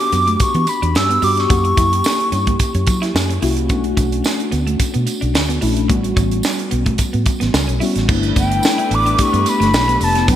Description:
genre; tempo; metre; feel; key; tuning
polished 1980s jazz-funk pop; 109 BPM; 4/4; swing 54% on 16ths; unclear; A4 = 438 Hz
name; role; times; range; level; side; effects
breathy jazz flute; melody; 0.0-3.0, 8.4-10.4 s; G5 to E6; -17 LUFS; equal; none
mellow tine electric piano; accompaniment; 0.0-10.4 s; F#3 to G4; -21 LUFS; left 3 dB; slow stereo tremolo, analog chorus
tight funk drum kit; drums; 0.0-10.4 s; crash cymbal, hi-hat, kick drum, snare drum; -19 LUFS; right 1 dB; gated reverb
clean electric guitar; riff; 0.1-10.4 s; A3 to F#4; -25 LUFS; right 3 dB; wide subtle chorus
vintage muted fingered electric bass; bass; 0.1-10.4 s; E1 to F#3; -19 LUFS; equal; none
tambourine; percussion; 0.1-10.4 s; none; -32 LUFS; right 5 dB; none
warm studio string section; sustained chords; 8.1-10.4 s; E3 to G5; -27 LUFS; right 1 dB; none
room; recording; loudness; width
moderate plate reverb, RT60 2.7 s; bright 1980s-style digital production; -14 LUFS; side -11 dB against mid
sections
0.0-8.1 A section; 8.1-10.4 B section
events
none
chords
0.0 Em9; 1.5 F#7b9; 3.7 Bm7; 5.9 A13; 8.1 G69

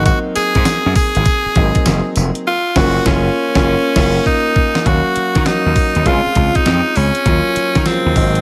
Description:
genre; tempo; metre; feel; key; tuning
R&B, new jack swing; 100 BPM; 4/4; swing 65% on 16ths; Eb dorian; A4 = 440 Hz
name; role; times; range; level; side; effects
raspy tenor saxophone; melody; 0.0-8.4 s; C4 to Ab4; -20 LUFS; equal; none
warm concert grand piano; accompaniment; 0.0-8.4 s; Db3 to F5; -22 LUFS; equal; none
gritty slap bass; bass; 0.0-8.4 s; F1 to Eb3; -19 LUFS; equal; overdrive
crisp 8-bit digital drum machine; drums; 0.1-8.4 s; crash cymbal, hi-hat, kick drum, snare drum, tambourine; -19 LUFS; equal; none
room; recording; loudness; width
light reverb, digital ambience; none; -14 LUFS; mono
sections
0.0-4.9 A section; 4.9-8.4 B section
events
band accent 2.5-4.9; drum fill 4.3-4.9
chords
0.0 Ab7; 2.5 Gbmaj7; 4.9 Ebm7; 6.1 Dbmaj9; 7.3 Ebm7

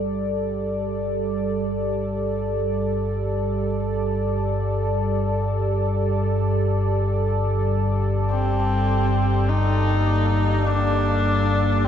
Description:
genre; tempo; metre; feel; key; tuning
dark ambient drone; free time; none; none; G minor; A4 = 440 Hz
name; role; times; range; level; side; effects
sweeping resonant pad; sustained chords; 0.0-11.9 s; G3 to D5; -24 LUFS; right 2 dB; chorus
deep rumbling drone; drone; 0.0-11.9 s; G1 to G2; -23 LUFS; left 1 dB; built-in reverb
clear horsehead fiddle; melody; 8.3-11.9 s; C4 to Eb4; -23 LUFS; left 1 dB; diffuse ambient delay
icy glass pad; texture; 9.8-11.9 s; Bb3; -30 LUFS; right 1 dB; chorus, built-in reverb
room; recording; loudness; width
wet cathedral reverb, RT60 5.3 s; nothing above 7.9 kHz; -20 LUFS; side -9 dB against mid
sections
0.0-11.9 A section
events
fade-in on horsehead fiddle 0.0-11.9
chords
0.0 Gmadd9

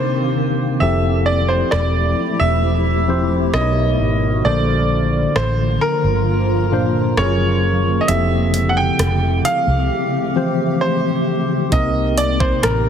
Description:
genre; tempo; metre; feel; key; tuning
contemporary R&B; 66 BPM; 4/4; straight; F major; A4 = 440 Hz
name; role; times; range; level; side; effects
clear grand piano; melody; 0.0-12.9 s; Bb4 to G5; -21 LUFS; right 1 dB; tape echo
tine electric piano; accompaniment; 0.0-12.9 s; Bb2 to Db5; -21 LUFS; left 2 dB; fast stereo tremolo
granular cloud pad; sustained chords; 0.0-12.9 s; Db3 to G4; -22 LUFS; equal; built-in reverb, sidechain pumping
vintage muted fingered electric bass; bass; 0.8-12.9 s; E1 to C2; -19 LUFS; equal; none
trap drum kit; drums; 1.7-12.8 s; hi-hat, kick drum, rim click; -24 LUFS; equal; none
room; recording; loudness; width
light reverb, digital ambience; heavily compressed radio sound, multiband compression; -15 LUFS; side -8 dB against mid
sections
0.0-12.9 A section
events
break 0.0-11.7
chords
0.0 Cm9; 0.8 Fmaj9; 3.5 Bmaj7; 4.4 Bbmaj7; 7.2 Gbmaj9; 8.1 Fmaj9; 11.7 Cm7

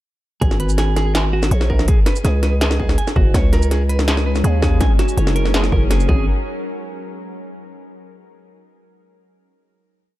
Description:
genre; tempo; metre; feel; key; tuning
half-time drum and bass; 164 BPM; 4/4; half-time; unclear; A4 = 440 Hz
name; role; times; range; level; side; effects
clean electric guitar; arpeggios; 0.4-6.3 s; F#4 to G#5; -25 LUFS; right 4 dB; tape echo
growling 808-style bass; bass; 0.4-6.3 s; F#1 to D#2; -17 LUFS; equal; none
electronic kick drum; drums; 0.4-6.2 s; none; -17 LUFS; equal; distortion
industrial drum kit; drums; 0.4-6.1 s; hi-hat, shaker, snare drum; -22 LUFS; equal; none
bowed-like drone; sustained chords; 3.9-6.3 s; F#3 to A#4; -27 LUFS; left 1 dB; built-in reverb, vintage 12-bit sampler grit, sidechain pumping
room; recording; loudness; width
digital ambience; dark, warm production; -14 LUFS; side -16 dB against mid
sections
0.4-6.3 drop; 6.3-7.7 final hit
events
drop 0.4-6.3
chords
0.4 N.C.; 1.9 B5; 3.3 C#sus2; 4.8 F#add9; 6.1 G#m; 6.3 N.C.

